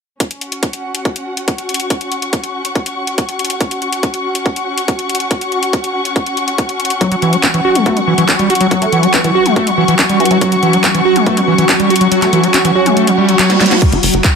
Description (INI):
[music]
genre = psychedelic trance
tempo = 141 BPM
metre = 4/4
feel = straight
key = unclear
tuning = A4 = 443 Hz
[part]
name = drum and bass drum kit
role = drums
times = 0.2-14.3 s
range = crash cymbal, handclaps, hi-hat, snare drum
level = -17 LUFS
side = left 1 dB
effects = overdrive
[part]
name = electronic kick drum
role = drums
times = 0.2-14.3 s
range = none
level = -15 LUFS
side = equal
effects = overdrive, high-pass filter on kick
[part]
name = dark studio string section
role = texture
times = 0.2-14.4 s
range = C#4 to C#6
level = -17 LUFS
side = left 2 dB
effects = sidechain pumping
[part]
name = swarming drone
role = sustained chords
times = 7.7-14.4 s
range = F#3 to F#4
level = -17 LUFS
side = right 1 dB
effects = built-in reverb, sidechain pumping
[part]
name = overdriven acid bass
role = riff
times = 7.0-13.8 s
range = E3 to F#4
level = -14 LUFS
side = equal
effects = auto-pan, sidechain pumping, digital delay
[part]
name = resonant blip pluck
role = second line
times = 7.9-12.9 s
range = E3 to C#4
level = -23 LUFS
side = equal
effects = phaser, sidechain pumping, high-pass filter, dub echo
[part]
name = reverse cymbal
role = sound effects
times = 13.1-13.8 s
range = none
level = -22 LUFS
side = right 6 dB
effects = none
[part]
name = tight sequencer bass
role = bass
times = 13.9-14.2 s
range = F#1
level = -16 LUFS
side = equal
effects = none
[sound]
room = light reverb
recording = none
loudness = -11 LUFS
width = side -5 dB against mid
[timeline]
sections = 0.2-13.8 A section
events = kick drops out 12.1-13.8; reverse cymbal 13.1-13.8; drum fill 13.5-13.8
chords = 0.2 F#5